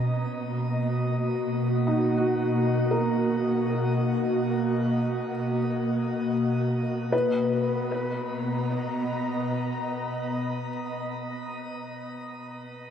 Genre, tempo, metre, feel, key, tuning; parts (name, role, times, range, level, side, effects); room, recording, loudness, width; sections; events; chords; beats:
ambient; free time; B major; A4 = 440 Hz
ethereal airy pad; sustained chords; 0.0-11.2 s; B2 to A#5; -26 LUFS; equal; ensemble chorus, built-in reverb
felt-muted upright piano; arpeggios; 0.0-12.9 s; D#4 to B4; -32 LUFS; left 1 dB; tape echo
warm chamber cello section; bass; 0.0-10.2 s; B2; -45 LUFS; left 1 dB
wet shimmer reverb, RT60 9.3 s; -24 LUFS; side -8 dB against mid
0.0-7.1 A section; 7.1-11.3 B section
0.0 D#m/B; 7.1 Bmaj7
free time